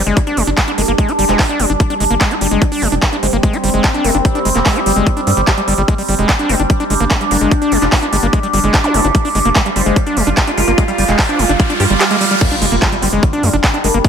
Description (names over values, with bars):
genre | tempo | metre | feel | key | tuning
psychedelic trance | 147 BPM | 4/4 | straight | G phrygian | A4 = 440 Hz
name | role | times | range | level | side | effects
resonant blip pluck | second line | 0.0-14.0 s | F3 to C4 | -27 LUFS | left 4 dB | none
overtone-sweeping drone | sustained chords | 0.0-14.1 s | G3 to F4 | -18 LUFS | right 1 dB | chorus, built-in reverb, phaser, sidechain pumping
overdriven acid bass | riff | 0.0-14.1 s | F3 to G4 | -18 LUFS | equal | distortion, auto-pan, sidechain pumping, ping-pong delay
tight sequencer bass | bass | 0.0-14.0 s | F1 to G2 | -18 LUFS | equal | none
big-room dance drum kit | drums | 0.1-14.1 s | crash cymbal, handclaps, hi-hat | -18 LUFS | right 1 dB | overdrive
electronic kick drum | drums | 0.2-14.1 s | none | -14 LUFS | equal | none
zap, riser and impact | sound effects | 8.8-14.0 s | none | -22 LUFS | equal | none
room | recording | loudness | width
light reverb | none | -11 LUFS | side -7 dB against mid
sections
0.0-12.4 A section; 12.4-14.1 B section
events
riser 9.1-12.4; drop 12.4-14.1; impact 12.4-14.0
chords
0.0 G5